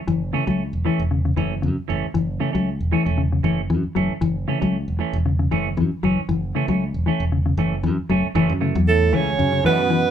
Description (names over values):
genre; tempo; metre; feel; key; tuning
afrobeat; 116 BPM; 4/4; swing 54% on 16ths; F# minor; A4 = 440 Hz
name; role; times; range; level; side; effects
mellow electric guitar; arpeggios; 0.1-10.0 s; C#3 to F#3; -22 LUFS; left 4 dB; none
fingered electric bass; bass; 0.1-10.1 s; E1 to F#2; -23 LUFS; equal; none
semi-hollow electric guitar; stabs; 0.3-9.8 s; E3 to C#4; -26 LUFS; right 7 dB; none
bright alto saxophone; melody; 8.9-10.1 s; A4 to C#5; -20 LUFS; right 6 dB; none
clear trombone section; second line; 8.9-10.1 s; A2 to C#3; -26 LUFS; right 6 dB; none
warm trombone; second line; 8.9-10.1 s; A3 to C#4; -26 LUFS; right 3 dB; none
room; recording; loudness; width
light reverb; band playing live in one room; -18 LUFS; side -9 dB against mid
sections
0.0-8.4 A section; 8.4-10.1 B section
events
none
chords
0.0 F#m7